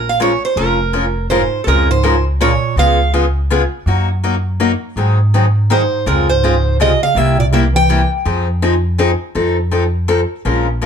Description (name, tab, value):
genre	acoustic string swing (jazz manouche)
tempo	164 BPM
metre	3/4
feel	swing 61% on 8ths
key	unclear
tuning	A4 = 440 Hz
part	picked steel-string acoustic guitar	melody	0.0-3.1, 5.7-8.1 s	A4 to G5	-17 LUFS	right 3 dB	none
part	upright bass	bass	0.0-10.9 s	F1 to Ab2	-16 LUFS	equal	none
part	picked steel-string acoustic guitar	accompaniment	0.2-10.9 s	C3 to Bb4	-17 LUFS	left 3 dB	none
part	dark bass clarinet	second line	1.3-3.1, 5.7-8.1 s	F2 to E3	-20 LUFS	right 6 dB	none
room	light reverb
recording	dark, warm production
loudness	-12 LUFS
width	side -7 dB against mid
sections	0.0-1.7 A section; 1.7-10.5 B section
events	none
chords	0.0 Bbm7; 1.7 Db6; 2.8 Db7; 3.9 Gb6; 5.0 Ab7; 6.1 Dbmaj7; 7.2 C7; 8.3 Fm7; 9.4 F7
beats	0.20 | 0.56 0.93 1.30 | 1.67 2.03 2.40 | 2.77 3.13 3.50 | 3.86 4.23 4.60 | 4.96 5.33 5.70 | 6.06 6.43 6.79 | 7.16 7.53 7.89 | 8.26 8.62 8.99 | 9.36 9.72 10.09 | 10.45 10.82